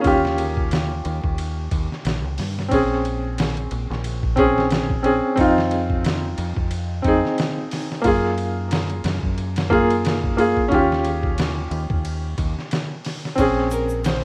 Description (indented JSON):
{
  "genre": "trip hop",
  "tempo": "90 BPM",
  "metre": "4/4",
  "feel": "swing 56% on 16ths",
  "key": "Bb minor",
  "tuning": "A4 = 441 Hz",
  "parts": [
    { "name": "felt-muted upright piano", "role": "accompaniment", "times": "0.0-14.2 s", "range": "Bb3 to Ab4", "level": "-23 LUFS", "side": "equal", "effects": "tremolo, vintage 12-bit sampler grit, low-pass filter, tape echo" },
    { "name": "deep dub fingered electric bass", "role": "bass", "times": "0.0-14.2 s", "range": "Bb1 to G2", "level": "-28 LUFS", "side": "equal", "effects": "none" },
    { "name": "trip hop sampler-style drum kit", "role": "drums", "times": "0.0-14.2 s", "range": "hi-hat, kick drum, ride cymbal, snare drum", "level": "-28 LUFS", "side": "equal", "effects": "none" },
    { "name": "tube shaker", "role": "percussion", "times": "13.4-14.2 s", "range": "none", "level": "-46 LUFS", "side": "equal", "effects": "none" },
    { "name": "semi-hollow electric guitar", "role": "melody", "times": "13.7-14.2 s", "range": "Bb4 to C5", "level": "-27 LUFS", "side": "equal", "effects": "none" }
  ],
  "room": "light reverb",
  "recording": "rough home demo mix, vinyl crackle",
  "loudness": "-21 LUFS",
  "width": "mono",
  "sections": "0.0-14.2 A section",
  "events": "none",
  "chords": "0.0 Eb7; 2.7 Bbm7; 5.4 Fm7; 8.0 Gbmaj7; 10.7 Eb7; 13.4 Bbm7",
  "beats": "| 0.04 0.71 1.38 2.04 | 2.71 3.38 4.04 4.71 | 5.38 6.04 6.71 7.38 | 8.04 8.71 9.38 10.04 | 10.71 11.38 12.04 12.71 | 13.38 14.04"
}